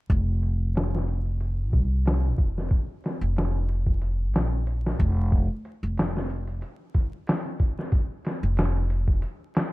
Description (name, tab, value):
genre	trip hop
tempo	92 BPM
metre	4/4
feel	swing 54% on 16ths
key	unclear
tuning	A4 = 439 Hz
part	upright bass	bass	0.1-9.2 s	F1 to C2	-25 LUFS	equal	none
part	boom bap sampler-style drum kit	drums	0.1-9.7 s	hi-hat, kick drum, snare drum	-25 LUFS	equal	low-pass filter on kick, low-pass filter on hats, low-pass filter on snare, low-pass filter on room
room	little or no reverb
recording	vinyl crackle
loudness	-23 LUFS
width	side -20 dB against mid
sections	0.1-9.7 A section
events	none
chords	none